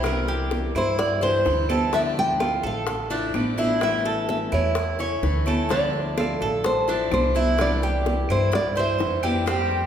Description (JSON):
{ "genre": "latin, Cuban son and guajira", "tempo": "127 BPM", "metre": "4/4", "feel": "straight", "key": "unclear", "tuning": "A4 = 440 Hz", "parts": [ { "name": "nylon-string guitar", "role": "melody", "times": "0.0-9.2 s", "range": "A4 to G5", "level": "-25 LUFS", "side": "left 1 dB", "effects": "none" }, { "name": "picked acoustic archtop guitar", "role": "accompaniment", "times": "0.0-9.9 s", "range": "C3 to G4", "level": "-30 LUFS", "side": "left 4 dB", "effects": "none" }, { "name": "Cuban tres", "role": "arpeggios", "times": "0.0-9.9 s", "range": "C4 to C#5", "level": "-26 LUFS", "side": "right 3 dB", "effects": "none" }, { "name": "upright bass", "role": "bass", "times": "0.0-9.9 s", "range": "A1 to G2", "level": "-27 LUFS", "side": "equal", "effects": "none" }, { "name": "bongos", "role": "percussion", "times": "0.0-9.9 s", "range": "none", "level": "-32 LUFS", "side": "left 4 dB", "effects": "none" }, { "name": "claves", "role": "percussion", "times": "0.0-9.5 s", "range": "none", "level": "-39 LUFS", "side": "right 5 dB", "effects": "none" }, { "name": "congas", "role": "percussion", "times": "0.0-9.9 s", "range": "none", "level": "-31 LUFS", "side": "equal", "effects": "none" }, { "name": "breathy bright concert flute", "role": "second line", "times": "9.5-9.9 s", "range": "G4", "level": "-26 LUFS", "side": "right 7 dB", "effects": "none" } ], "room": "wet recital hall reverb, RT60 1.7 s", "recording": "recorded in a church or concert hall", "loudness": "-20 LUFS", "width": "side -9 dB against mid", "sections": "0.0-9.5 A section", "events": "none", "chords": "0.0 Cadd9; 1.9 Dmadd9; 3.8 A; 5.7 Dmadd9; 7.6 Cadd9", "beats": "| 0.04 0.51 0.99 1.46 | 1.93 2.40 2.87 3.35 | 3.82 4.29 4.76 5.23 | 5.70 6.17 6.65 7.12 | 7.59 8.06 8.53 9.00 | 9.47" }